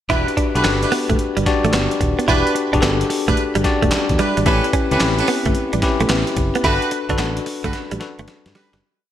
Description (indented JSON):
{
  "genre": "R&B, new jack swing",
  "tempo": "110 BPM",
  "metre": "4/4",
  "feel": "swing 66% on 16ths",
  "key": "E dorian",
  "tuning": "A4 = 440 Hz",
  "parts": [
    { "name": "bell-like tine electric piano", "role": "accompaniment", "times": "0.1-8.8 s", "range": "C4 to D5", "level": "-21 LUFS", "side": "left 4 dB", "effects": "medium stereo tremolo" },
    { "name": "direct-recorded clean electric guitar", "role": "riff", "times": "0.1-8.8 s", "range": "G3 to E4", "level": "-23 LUFS", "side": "right 4 dB", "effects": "lush chorus" },
    { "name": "clear horn section", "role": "stabs", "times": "0.1-8.8 s", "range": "C#4 to B4", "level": "-23 LUFS", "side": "right 3 dB", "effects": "digital delay" },
    { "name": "fingered electric bass", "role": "bass", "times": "0.1-8.8 s", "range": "D#1 to G2", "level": "-23 LUFS", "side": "equal", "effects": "none" },
    { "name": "boom bap sampler-style drum kit", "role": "drums", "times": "0.1-8.8 s", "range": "handclaps, hi-hat, kick drum, snare drum", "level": "-22 LUFS", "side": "equal", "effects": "gated reverb" }
  ],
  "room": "moderate plate reverb, RT60 1.7 s",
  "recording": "bright 1980s-style digital production",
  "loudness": "-16 LUFS",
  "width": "side -11 dB against mid",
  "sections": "0.1-8.8 verse",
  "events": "fade-out 6.6-8.8; drum fill 7.7-8.8",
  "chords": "0.1 Em7; 4.5 A9; 6.6 Gmaj9",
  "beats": "| 0.10 0.64 1.19 1.73 | 2.28 2.83 3.37 3.92 | 4.46 5.01 5.55 6.10 | 6.64 7.19 7.73 8.28"
}